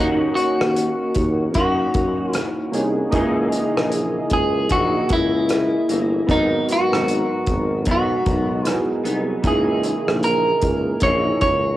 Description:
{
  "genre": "indie pop, bedroom pop",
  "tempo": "76 BPM",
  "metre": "4/4",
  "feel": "swing 60% on 16ths",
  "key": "C# dorian",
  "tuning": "A4 = 440 Hz",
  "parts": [
    { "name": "clean electric guitar", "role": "melody", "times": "0.0-11.8 s", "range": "D#4 to C#5", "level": "-21 LUFS", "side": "equal", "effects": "wide subtle chorus, cassette tape" },
    { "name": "electric guitar through a small old amp", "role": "accompaniment", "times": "0.0-11.8 s", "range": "G#2 to F#4", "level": "-27 LUFS", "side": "left 2 dB", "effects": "ensemble chorus, warbly pitch drift, cassette tape" },
    { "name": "warbly lo-fi synth keys", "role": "accompaniment", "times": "0.0-11.8 s", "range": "A#3 to D#5", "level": "-24 LUFS", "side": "right 1 dB", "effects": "chorus, cassette tape" },
    { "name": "warm tuba", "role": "bass", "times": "0.0-11.8 s", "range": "G1 to F#2", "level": "-23 LUFS", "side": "equal", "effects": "none" },
    { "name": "loose indie drum kit", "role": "drums", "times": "0.4-11.6 s", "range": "hi-hat, kick drum, rim click", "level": "-25 LUFS", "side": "equal", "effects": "cassette tape" }
  ],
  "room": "light reverb",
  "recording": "home recording on cassette",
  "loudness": "-17 LUFS",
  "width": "side -14 dB against mid",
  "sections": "0.0-11.8 A section",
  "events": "none",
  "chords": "0.0 D#m7; 3.1 C#m69; 6.3 G#m7; 9.4 C#m69",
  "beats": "0.77 1.55 2.34 | 3.13 3.92 4.71 5.50 | 6.29 7.08 7.87 8.66 | 9.45 10.23 11.02"
}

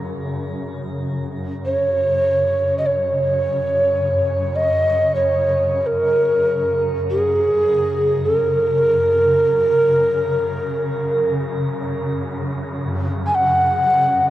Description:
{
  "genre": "world meditative, free-time meditation music",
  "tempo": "free time",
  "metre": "none",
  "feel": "none",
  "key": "F# major pentatonic",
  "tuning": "A4 = 440 Hz",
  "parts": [
    { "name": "swarming drone", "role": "drone", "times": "0.0-14.3 s", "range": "F#2 to C#3", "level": "-24 LUFS", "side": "equal", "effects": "built-in reverb" },
    { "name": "breathy mellow Native American-style cedar flute", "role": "melody", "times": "1.7-14.3 s", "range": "G#4 to G#5", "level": "-17 LUFS", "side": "right 1 dB", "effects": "shimmer reverb" }
  ],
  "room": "wet huge ambient reverb, RT60 4.0 s",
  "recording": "worn, warbling old tape, cassette tape, warbly pitch drift",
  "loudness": "-16 LUFS",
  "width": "side -14 dB against mid",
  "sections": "0.0-14.3 A section",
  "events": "none",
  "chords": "none",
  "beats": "free time"
}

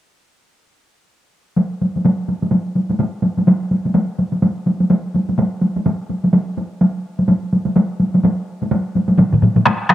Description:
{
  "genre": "japanese traditional, taiko drum ensemble",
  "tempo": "126 BPM",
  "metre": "4/4",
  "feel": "swing 60% on 16ths",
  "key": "none",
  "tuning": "none",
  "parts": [
    { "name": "taiko ensemble", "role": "percussion", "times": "1.6-9.9 s", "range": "none", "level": "-15 LUFS", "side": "equal", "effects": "none" },
    { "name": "taiko ensemble", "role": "percussion", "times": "9.2-9.9 s", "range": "none", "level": "-15 LUFS", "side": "left 3 dB", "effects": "none" },
    { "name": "taiko ensemble", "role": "percussion", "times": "9.2-9.9 s", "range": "none", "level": "-19 LUFS", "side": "right 4 dB", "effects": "none" }
  ],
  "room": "light reverb, small room reverb",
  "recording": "home recording on cassette",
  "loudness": "-15 LUFS",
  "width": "side -13 dB against mid",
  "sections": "1.6-9.2 A section",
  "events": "none",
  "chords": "none",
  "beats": "| 1.57 2.04 2.52 3.00 | 3.47 3.95 4.42 4.90 | 5.38 5.85 6.33 6.80 | 7.28 7.75 8.23 8.70 | 9.18 9.65"
}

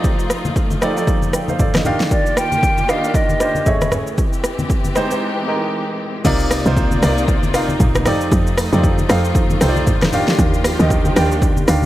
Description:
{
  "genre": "amapiano",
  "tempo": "116 BPM",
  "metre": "4/4",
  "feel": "swing 58% on 16ths",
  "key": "C minor",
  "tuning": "A4 = 441 Hz",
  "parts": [
    { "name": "clear baby grand piano", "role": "accompaniment", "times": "0.0-11.9 s", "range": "C3 to G5", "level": "-21 LUFS", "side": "right 1 dB", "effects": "none" },
    { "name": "warm studio string section", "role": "sustained chords", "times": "0.0-11.9 s", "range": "C3 to D5", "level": "-24 LUFS", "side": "equal", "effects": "sidechain pumping" },
    { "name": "deep house drum kit", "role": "drums", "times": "0.0-11.9 s", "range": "crash cymbal, hi-hat, kick drum, rim click, shaker, snare drum", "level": "-18 LUFS", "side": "equal", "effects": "overdrive" },
    { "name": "congas", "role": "percussion", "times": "0.5-11.9 s", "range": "none", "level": "-24 LUFS", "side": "left 2 dB", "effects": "none" },
    { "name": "hollow concert flute", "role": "melody", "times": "2.1-3.9 s", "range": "D5 to G5", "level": "-21 LUFS", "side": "equal", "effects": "digital delay" },
    { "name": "tight log drum bass", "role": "bass", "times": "6.2-11.9 s", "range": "G1 to F2", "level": "-18 LUFS", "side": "equal", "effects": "none" }
  ],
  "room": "light reverb, studio ambience",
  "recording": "none",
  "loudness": "-14 LUFS",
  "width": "side -14 dB against mid",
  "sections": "0.0-6.2 A section; 6.2-11.9 B section",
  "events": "break 5.2-6.2; drop 6.2-11.9",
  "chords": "0.0 F13; 1.9 Ebmaj9; 3.7 Amaj7; 4.2 Abmaj7; 6.2 Cm11; 8.1 F13; 10.1 Ebmaj9",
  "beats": "| 0.04 0.56 1.08 1.59 | 2.11 2.63 3.15 3.66 | 4.18 4.70 5.21 5.73 | 6.25 6.77 7.28 7.80 | 8.32 8.84 9.35 9.87 | 10.39 10.90 11.42"
}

